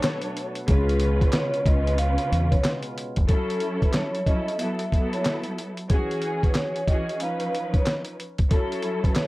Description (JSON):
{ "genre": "hip hop, boom-bap hip-hop", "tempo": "92 BPM", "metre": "4/4", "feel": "swing 63% on 16ths", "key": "F# dorian from 3.3 s", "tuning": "A4 = 441 Hz", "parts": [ { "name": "warm studio string section", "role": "accompaniment", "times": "0.0-9.3 s", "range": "C#3 to C#5", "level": "-29 LUFS", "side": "equal", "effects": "cassette tape, high-pass filter, low-pass filter" }, { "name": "percussive tonewheel organ", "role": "sustained chords", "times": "0.0-3.3 s", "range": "B2 to F#4", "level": "-37 LUFS", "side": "equal", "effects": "slow rotary speaker, high-pass filter, low-pass filter" }, { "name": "dusty soul sampler-style drum kit", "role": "drums", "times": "0.0-9.3 s", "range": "handclaps, hi-hat, kick drum, snare drum", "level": "-23 LUFS", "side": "equal", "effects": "none" }, { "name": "vibraphone with soft mallets", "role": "melody", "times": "0.7-9.3 s", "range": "G#4 to E#5", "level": "-29 LUFS", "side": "equal", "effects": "high-pass filter, low-pass filter" }, { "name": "deep dub fingered electric bass", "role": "bass", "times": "0.7-3.3 s", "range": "E#1 to E2", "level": "-23 LUFS", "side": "equal", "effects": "none" } ], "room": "little or no reverb", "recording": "dry, gritty hardware recording, vinyl crackle", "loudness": "-22 LUFS", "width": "side -20 dB against mid", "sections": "0.0-3.3 A section; 3.3-9.3 B section", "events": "none", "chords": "0.0 Bm9; 0.7 C#7; 3.3 F#m7; 4.6 B7sus4/F#; 5.9 E69; 7.2 C#7/E#; 8.5 F#m7" }